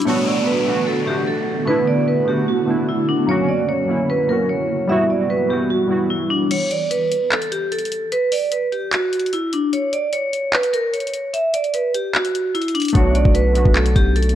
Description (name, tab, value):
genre	hip hop, trap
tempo	149 BPM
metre	4/4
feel	half-time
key	B minor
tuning	A4 = 441 Hz
part	vibraphone with hard mallets	melody	0.0-14.4 s	D4 to E5	-20 LUFS	right 1 dB	low-pass filter
part	warbly lo-fi synth keys	accompaniment	0.0-6.5, 12.9-14.4 s	F#3 to F#4	-21 LUFS	right 1 dB	chorus, low-pass filter
part	granular cloud pad	sustained chords	0.0-6.5 s	C#3 to F#4	-25 LUFS	equal	built-in reverb
part	trap drum kit	drums	0.0-0.1, 6.5-14.4 s	crash cymbal, handclaps, hi-hat, kick drum	-21 LUFS	equal	none
part	downlifter	sound effects	0.1-3.3 s	none	-29 LUFS	left 2 dB	none
part	long sustained 808-style bass	bass	13.0-14.4 s	B1	-16 LUFS	equal	none
room	light reverb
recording	worn, warbling old tape, cassette tape, warbly pitch drift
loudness	-16 LUFS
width	side -11 dB against mid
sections	0.1-6.5 A section; 6.5-14.4 B section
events	kick muted 6.5-13.0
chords	0.1 Bm7; 3.3 F#; 4.9 Emadd9; 6.5 N.C.; 13.0 Bm7